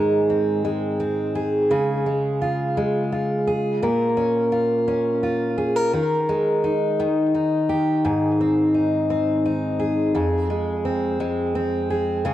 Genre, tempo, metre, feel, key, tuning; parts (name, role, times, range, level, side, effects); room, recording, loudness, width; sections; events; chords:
pop; 57 BPM (dotted quarters); 6/8; straight; Ab major; A4 = 440 Hz
picked steel-string acoustic guitar; solo; 0.0-12.3 s; F2 to Bb4; -19 LUFS; equal; tape echo
moderate spring reverb, RT60 1.9 s, small room ambience; echo-heavy mix, cassette tape; -19 LUFS; side -13 dB against mid
0.0-12.3 A section
0.0 Ab; 1.7 Db; 3.8 Bbm; 5.9 Ebsus4; 7.0 Eb; 8.0 Ab; 10.1 Fm